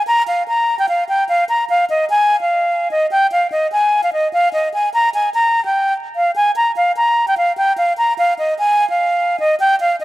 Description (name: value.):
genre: hip hop.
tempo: 148 BPM.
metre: 4/4.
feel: half-time.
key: F minor.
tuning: A4 = 440 Hz.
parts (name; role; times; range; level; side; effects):
breathy concert flute; solo; 0.0-10.0 s; Eb5 to Bb5; -14 LUFS; equal; none.
room: light reverb, small room ambience.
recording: vinyl crackle.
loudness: -14 LUFS.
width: side -17 dB against mid.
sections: 0.0-1.7 A section; 1.7-10.0 B section.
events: none.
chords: none.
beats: | 0.07 0.48 0.89 1.29 | 1.70 2.10 2.51 2.91 | 3.32 3.72 4.13 4.53 | 4.94 5.34 5.75 6.16 | 6.56 6.97 7.37 7.78 | 8.18 8.59 8.99 9.40 | 9.80.